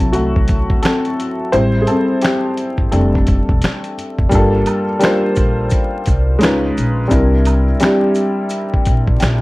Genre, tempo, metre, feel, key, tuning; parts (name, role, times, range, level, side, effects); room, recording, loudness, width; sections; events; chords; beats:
lo-fi hip hop; 86 BPM; 4/4; swing 63% on 16ths; G dorian; A4 = 441 Hz
felt-muted upright piano; accompaniment; 0.0-9.4 s; F#3 to G5; -16 LUFS; left 1 dB; cassette tape
upright bass; bass; 0.0-9.4 s; E1 to D2; -17 LUFS; equal
dusty soul sampler-style drum kit; drums; 0.0-9.4 s; finger snaps, hi-hat, kick drum, snare drum; -17 LUFS; equal
maracas and woodblock; percussion; 4.3-9.4 s; -30 LUFS; right 6 dB
moderate small room reverb, RT60 0.5 s; vinyl crackle; -13 LUFS; side -20 dB against mid
0.0-4.3 A section; 4.3-9.4 B section
felt piano solo 0.0-4.3; felt piano fill 8.9-9.4
0.0 D7 (rootless); 1.5 Am7; 2.9 F6; 4.3 Gm7; 6.4 C#9; 7.1 C7
0.14 0.83 | 1.53 2.23 2.92 3.62 | 4.32 5.02 5.72 6.41 | 7.11 7.81 8.51 9.20